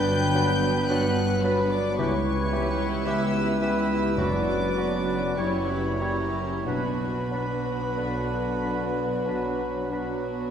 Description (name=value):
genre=classical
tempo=45-56 BPM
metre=4/4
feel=rubato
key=B minor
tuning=A4 = 438 Hz
part: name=warm symphonic violin section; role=melody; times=0.0-10.5 s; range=A#5 to G6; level=-36 LUFS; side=left 3 dB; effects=none
part: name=mellow hollow flute section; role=second line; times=0.0-10.5 s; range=A#4 to G5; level=-33 LUFS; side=left 2 dB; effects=none
part: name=warm symphonic violin section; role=second line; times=0.0-10.5 s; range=D4 to B4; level=-34 LUFS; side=left 1 dB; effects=none
part: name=dark symphonic viola section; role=accompaniment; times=0.0-10.5 s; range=E3 to C#4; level=-35 LUFS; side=right 1 dB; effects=none
part: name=mellow French horn section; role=sustained chords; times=0.0-10.5 s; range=F#3 to F#4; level=-32 LUFS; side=left 1 dB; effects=none
part: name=concert harp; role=arpeggios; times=0.0-10.5 s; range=F#2 to G4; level=-36 LUFS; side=left 4 dB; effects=none
part: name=clear trumpet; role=stabs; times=0.0-10.5 s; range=B4 to C#5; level=-31 LUFS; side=equal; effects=none
part: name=dark chamber cello section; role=bass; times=0.0-10.4 s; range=C#2 to B2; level=-31 LUFS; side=right 1 dB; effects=none
part: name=rich symphonic double bass section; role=bass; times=0.0-10.4 s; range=F#1 to C#2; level=-33 LUFS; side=right 2 dB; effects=none
part: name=bright clarinet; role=second line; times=0.3-10.1 s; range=D4 to G4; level=-38 LUFS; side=equal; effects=none
part: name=warm oboe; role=second line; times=0.3-10.1 s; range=B4 to C#5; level=-38 LUFS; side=equal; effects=none
part: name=mellow bassoon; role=accompaniment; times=0.3-10.5 s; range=D3 to G3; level=-35 LUFS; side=right 2 dB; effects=none
part: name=timpani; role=percussion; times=4.2-5.3 s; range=F#2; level=-38 LUFS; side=equal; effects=none
room=wet concert hall reverb, RT60 2.5 s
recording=none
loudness=-23 LUFS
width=side -8 dB against mid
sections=0.0-10.5 A section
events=none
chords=0.0 Gmaj7; 2.0 C#m7b5; 4.2 Bm/F#; 5.4 F#7b9; 6.7 Bm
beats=0.90 | 1.99 3.06 4.18 5.38 | 6.66 7.97 9.28